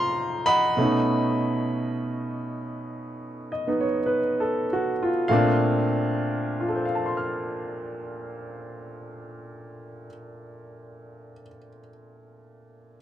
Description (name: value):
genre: solo jazz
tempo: 46-62 BPM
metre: 4/4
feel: swing 69% on 8ths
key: unclear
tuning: A4 = 440 Hz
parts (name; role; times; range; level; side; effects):
- clear baby grand piano; solo; 0.0-13.0 s; F2 to F6; -24 LUFS; equal; none
room: light reverb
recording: close, detailed microphones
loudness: -22 LUFS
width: side -11 dB against mid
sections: 0.0-5.3 A section; 5.3-10.5 B section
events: slowing down 0.0-5.3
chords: 0.0 F7sus4; 0.8 B9; 5.3 Bbmaj9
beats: | 0.78 1.80 2.88 4.04 | 5.28 6.58 7.87 9.16